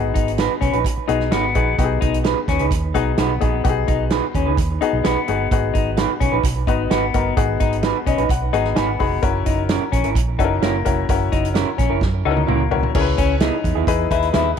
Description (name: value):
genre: uptempo 1960s-style soul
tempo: 129 BPM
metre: 4/4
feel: straight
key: G# minor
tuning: A4 = 442 Hz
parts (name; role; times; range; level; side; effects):
- clear baby grand piano; accompaniment; 0.0-14.6 s; B3 to B5; -23 LUFS; left 10 dB; none
- vintage muted fingered electric bass; bass; 0.0-14.5 s; E#1 to F#2; -23 LUFS; right 2 dB; none
- semi-hollow electric guitar; riff; 0.1-14.5 s; A#3 to E4; -24 LUFS; left 9 dB; none
- natural country drum kit; drums; 0.2-14.6 s; crash cymbal, hi-hat, kick drum, snare drum, toms; -22 LUFS; right 1 dB; none
- electric guitar through a small old amp; stabs; 0.4-14.5 s; B3 to B4; -25 LUFS; right 14 dB; wide subtle chorus, tape echo
room: light reverb, studio ambience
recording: 1960s-style stereo with parts hard left and right, faint mains hum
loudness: -16 LUFS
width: side -7 dB against mid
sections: 0.0-12.9 A section; 12.9-14.6 B section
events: grand piano fill 4.8-5.5, 7.8-9.2; drum fill 12.0-12.9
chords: 0.0 G#m7; 9.2 F#7; 12.9 C#m7; 13.9 Emaj7